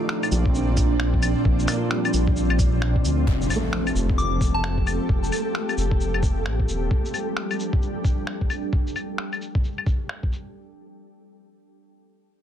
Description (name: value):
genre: future garage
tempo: 132 BPM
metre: 4/4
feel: swing 62% on 16ths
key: G minor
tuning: A4 = 441 Hz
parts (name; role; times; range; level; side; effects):
- felt-muted upright piano; accompaniment; 0.0-5.1 s; G3 to F4; -32 LUFS; right 3 dB; sidechain pumping, low-pass filter, tape echo
- ethereal airy pad; sustained chords; 0.0-8.7 s; Bb2 to A4; -28 LUFS; equal; ensemble chorus, built-in reverb, vintage 12-bit sampler grit, sidechain pumping
- flickering grainy texture; texture; 0.0-8.7 s; A3 to D5; -35 LUFS; equal; built-in reverb
- electronic finger snaps, shaker, claves and cabasa; drums; 0.1-10.4 s; none; -29 LUFS; left 3 dB; overdrive, low-pass filter on perc, vintage 12-bit sampler grit, soft clipping on snare, low-pass filter on snare
- dark detuned saw bass; bass; 0.3-6.9 s; Eb1 to D2; -23 LUFS; equal; sidechain pumping
- electronic kick drum; drums; 0.5-10.3 s; none; -23 LUFS; equal; vintage 12-bit sampler grit
- impact; sound effects; 3.3-5.1 s; none; -31 LUFS; equal; none
- soft synth bell; melody; 4.2-4.7 s; A5 to D6; -31 LUFS; left 3 dB; chorus, phaser, analog delay
room: little or no reverb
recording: dense, heavily limited modern master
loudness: -21 LUFS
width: side -10 dB against mid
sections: 0.0-3.3 A section; 3.3-10.5 B section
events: impact 3.3-5.1; filter sweep on detuned saw bass 3.3-6.9; filter sweep on felt piano 3.3-5.1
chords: 0.0 Bb; 3.3 F; 6.9 G5